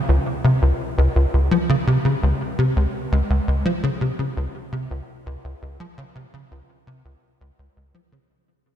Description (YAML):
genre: ambient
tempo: 84 BPM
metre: 4/4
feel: straight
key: unclear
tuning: A4 = 440 Hz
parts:
  - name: tight sequencer bass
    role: solo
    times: 0.1-8.2 s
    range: Db2 to F3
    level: -19 LUFS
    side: equal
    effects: ensemble chorus, tape echo
room: moderate lush hall reverb, RT60 2.9 s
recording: dark, warm production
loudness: -18 LUFS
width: side -10 dB against mid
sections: 0.0-8.3 A section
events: fade-out 0.0-8.3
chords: none